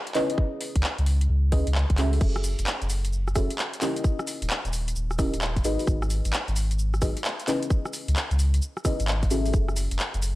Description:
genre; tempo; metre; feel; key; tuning
UK garage, two-step garage; 131 BPM; 4/4; swing 65% on 16ths; unclear; A4 = 440 Hz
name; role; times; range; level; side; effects
deep mellow chord stab; stabs; 0.1-10.4 s; C#4 to E5; -30 LUFS; equal; chorus, phaser, analog delay
garage drum kit; drums; 0.1-10.3 s; cabasa, crash cymbal, handclaps, hi-hat, rim click; -30 LUFS; equal; none
electronic kick drum; drums; 0.4-9.7 s; none; -24 LUFS; equal; none
saturated sub bass; bass; 0.8-10.4 s; D#1 to C#2; -24 LUFS; equal; none
room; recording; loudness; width
digital ambience; dry, gritty hardware recording, cassette tape; -23 LUFS; side -17 dB against mid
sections
0.0-10.4 A section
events
none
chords
0.1 C#m7; 2.2 F#m9; 3.8 D#7b9; 5.6 G#m7; 7.5 C#m7; 9.5 F#m9

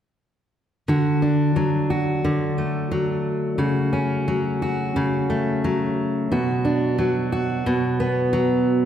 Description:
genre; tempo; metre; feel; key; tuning
pop; 89 BPM; 4/4; straight; D major; A4 = 443 Hz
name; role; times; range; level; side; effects
fingerpicked steel-string acoustic guitar; solo; 0.9-8.9 s; B2 to F#4; -19 LUFS; equal; none
room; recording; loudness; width
wet scoring stage reverb, RT60 1.6 s; recorded in a church or concert hall; -20 LUFS; side -9 dB against mid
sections
0.9-8.9 A section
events
none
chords
0.9 D; 3.6 F#m/C#; 6.3 Bm

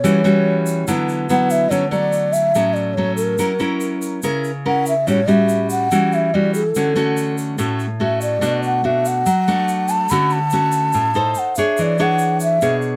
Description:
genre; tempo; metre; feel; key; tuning
bossa nova; 143 BPM; 4/4; straight; D major; A4 = 444 Hz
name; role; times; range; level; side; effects
breathy mellow bass bansuri; melody; 0.0-12.7 s; A4 to B5; -21 LUFS; equal; none
nylon-string guitar; accompaniment; 0.0-13.0 s; A2 to C#5; -20 LUFS; equal; none
egg shaker; percussion; 0.0-13.0 s; none; -36 LUFS; equal; none
room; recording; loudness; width
little or no reverb; close, detailed microphones; -18 LUFS; mono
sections
0.0-1.7 A section; 1.7-13.0 B section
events
bansuri solo 0.0-1.7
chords
0.0 Em69; 0.9 D69; 1.7 Dmaj7; 3.4 F#7; 5.1 A6; 6.7 Dmaj7; 8.4 Bm7; 10.1 Dmaj7; 11.4 Dmaj9#11; 11.8 E13

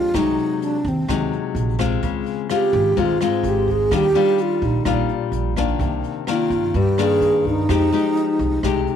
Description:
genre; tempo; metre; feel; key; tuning
bossa nova; 127 BPM; 4/4; straight; Eb major; A4 = 439 Hz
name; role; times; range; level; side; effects
mellow hollow alto flute; melody; 0.0-9.0 s; C4 to Ab4; -20 LUFS; right 2 dB; none
nylon-string guitar; accompaniment; 0.0-9.0 s; F2 to G4; -22 LUFS; left 9 dB; none
upright bass; bass; 0.0-8.8 s; Ab1 to G2; -24 LUFS; right 3 dB; none
jazz brush drum kit; drums; 0.1-9.0 s; hi-hat, kick drum, rim click; -31 LUFS; right 2 dB; none
room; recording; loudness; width
light reverb, small room ambience; 1960s-style stereo; -17 LUFS; side -8 dB against mid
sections
0.0-9.0 A section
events
none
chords
0.1 Ab7/C; 2.0 Dbmaj7; 3.9 Ebmaj9; 5.8 Cm9; 7.7 Fm9

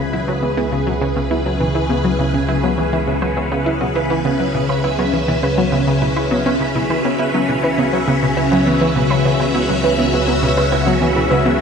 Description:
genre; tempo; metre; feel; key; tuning
ambient, sequencer-driven space music; 102 BPM; 4/4; straight; unclear; A4 = 438 Hz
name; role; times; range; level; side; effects
phased string machine; sustained chords; 0.0-11.6 s; C#3 to E5; -18 LUFS; equal; ensemble chorus, phaser, shimmer reverb
analog pluck; riff; 0.0-11.5 s; C#3 to E4; -20 LUFS; equal; chorus, phaser, tape echo, shimmer reverb
fat analog bass; bass; 0.0-11.6 s; C#2; -25 LUFS; equal; none
warbly dusty pluck; arpeggios; 0.1-11.6 s; B2 to B4; -22 LUFS; right 1 dB; chorus, auto-pan, tape echo, shimmer reverb
room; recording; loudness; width
wet huge ambient reverb, RT60 8.0 s; dreamy mix soaked in reverb; -15 LUFS; side -6 dB against mid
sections
0.0-11.6 A section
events
none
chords
0.0 C#m7

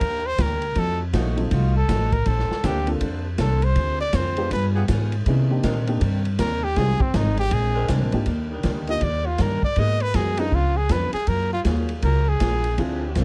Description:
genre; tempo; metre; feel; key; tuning
jazz, big band swing; 160 BPM; 4/4; swing 63% on 8ths; unclear; A4 = 441 Hz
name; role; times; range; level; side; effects
clear trumpet; melody; 0.0-12.8 s; C4 to Eb5; -27 LUFS; equal; none
picked steel-string acoustic guitar; accompaniment; 0.0-13.2 s; F2 to C5; -34 LUFS; equal; none
mellow saxophone section; sustained chords; 0.0-13.2 s; D3 to Bb4; -36 LUFS; equal; none
upright bass; bass; 0.0-13.2 s; Ab1 to C3; -25 LUFS; equal; none
open jazz drum kit; drums; 0.0-13.2 s; hi-hat, kick drum, ride cymbal, snare drum; -31 LUFS; equal; none
dark baby grand piano; accompaniment; 1.4-10.5, 12.8-13.0 s; Gb3 to A4; -30 LUFS; equal; none
room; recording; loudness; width
little or no reverb; dark, warm production; -22 LUFS; mono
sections
0.0-8.3 A section; 8.3-13.2 A section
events
trumpet solo 0.0-13.2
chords
0.0 Ebmaj7; 0.8 F7b9; 2.3 Bbmaj9; 3.8 Dm7b5; 4.5 G7b9; 5.3 Cm9; 6.8 Fm7; 7.5 Bb9; 8.3 Ebmaj7; 9.8 Abm9; 10.5 Db7b9; 11.3 Gbmaj9

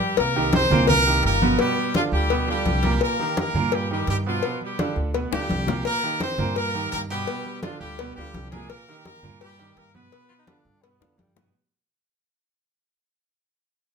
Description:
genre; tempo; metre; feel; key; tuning
latin, salsa; 169 BPM; 4/4; straight; unclear; A4 = 440 Hz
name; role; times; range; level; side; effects
brilliant horn section; melody; 0.0-10.6 s; F3 to C5; -25 LUFS; equal; none
upright bass; bass; 0.2-11.5 s; G1 to G2; -27 LUFS; equal; none
congas; percussion; 0.2-11.5 s; none; -26 LUFS; equal; none
cowbell and bongos; percussion; 0.2-11.5 s; none; -28 LUFS; left 9 dB; none
bright concert grand piano; accompaniment; 0.4-11.5 s; Bb2 to B4; -28 LUFS; right 4 dB; none
breathy baritone saxophone; second line; 10.3-11.5 s; G3 to F4; -66 LUFS; left 2 dB; none
room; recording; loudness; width
moderate studio reverb, RT60 0.8 s; none; -20 LUFS; side -6 dB against mid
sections
0.2-11.5 A section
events
drum fill 0.0, 5.3-5.9, 11.0-11.5; band accent 0.0; fade-out 0.2-11.5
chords
0.2 Cm7; 1.6 G7; 3.0 G7alt; 4.4 G7; 5.9 Cm7; 7.3 G7; 8.7 Bmaj7#5; 10.1 G7

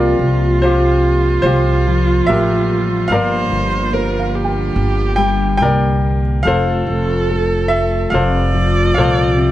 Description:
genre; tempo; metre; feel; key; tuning
acoustic folk-pop ballad; 72 BPM; 4/4; straight; F major; A4 = 445 Hz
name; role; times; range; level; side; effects
bright upright piano; melody; 0.0-9.5 s; F4 to G5; -19 LUFS; left 1 dB; none
clear viola; second line; 0.0-9.5 s; F4 to D5; -21 LUFS; right 4 dB; none
nylon-string guitar; accompaniment; 0.0-9.5 s; F2 to Bb4; -20 LUFS; left 3 dB; none
warm chamber string section; sustained chords; 0.0-9.5 s; C3 to F4; -26 LUFS; equal; none
felt-muted upright piano; arpeggios; 0.0-6.7 s; Bb4 to G5; -27 LUFS; right 5 dB; none
upright bass; bass; 0.0-9.5 s; F1 to C2; -17 LUFS; equal; none
room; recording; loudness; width
light reverb; dark, warm production; -13 LUFS; side -14 dB against mid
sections
0.0-9.5 A section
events
none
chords
0.0 C7sus4; 3.1 Gm7; 6.5 F

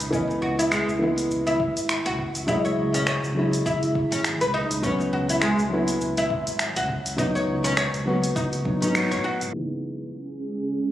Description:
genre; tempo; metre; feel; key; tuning
organic downtempo; 102 BPM; 4/4; swing 57% on 16ths; C# minor; A4 = 439 Hz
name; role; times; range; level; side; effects
felt-muted upright piano; accompaniment; 0.0-10.9 s; C#2 to D#5; -26 LUFS; equal; sidechain pumping, ping-pong delay
oud; arpeggios; 0.0-9.4 s; G#3 to C#5; -26 LUFS; equal; ping-pong delay
smooth gliding synth bass; bass; 0.0-9.5 s; G#1 to C#2; -31 LUFS; equal; sidechain pumping
organic electronic drum kit; drums; 0.0-9.5 s; finger snaps, hi-hat, shaker; -29 LUFS; equal; low-pass filter on snare, low-pass filter on perc, low-pass filter on hats, low-pass filter on room
electronic kick drum; drums; 0.1-9.2 s; none; -31 LUFS; equal; none
granular cloud pad; sustained chords; 10.2-10.9 s; C#4 to D#5; -27 LUFS; right 2 dB; built-in reverb, sidechain pumping
room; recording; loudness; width
moderate concert hall reverb, RT60 2.1 s; recorded on a phone in the room, club reverb, low-pass filter; -22 LUFS; side -12 dB against mid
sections
0.0-9.5 A section; 9.5-10.9 B section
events
band accent 9.0; filter sweep 9.5-10.9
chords
0.1 C#m9; 4.8 E69; 7.2 G#m7/C#; 9.5 C#m9

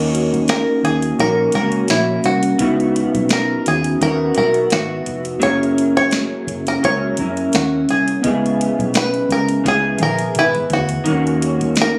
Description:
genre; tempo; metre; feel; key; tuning
indie pop, bedroom pop; 85 BPM; 4/4; swing 55% on 16ths; C# dorian; A4 = 440 Hz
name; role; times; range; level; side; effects
bluegrass banjo; melody; 0.0-11.9 s; E4 to C#5; -21 LUFS; equal; lush chorus, slapback echo
electric guitar through a small old amp; accompaniment; 0.0-12.0 s; C#3 to A#4; -22 LUFS; equal; analog chorus, vibrato effect
tine electric piano; accompaniment; 0.0-11.1 s; A#3 to D#5; -25 LUFS; equal; cassette tape
vintage muted fingered electric bass; bass; 0.0-11.9 s; E#1 to F#2; -26 LUFS; equal; none
soft vintage rhythm box; drums; 0.0-11.9 s; hi-hat, kick drum, snare drum, toms; -25 LUFS; equal; none
room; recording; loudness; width
light reverb, digital ambience; recorded on a phone in the room, studio ambience; -17 LUFS; mono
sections
0.0-11.1 A section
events
drum fill 9.7-11.1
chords
0.0 D#m7; 2.6 C#m11; 5.4 F#7; 8.2 C#m7; 11.1 D#m7

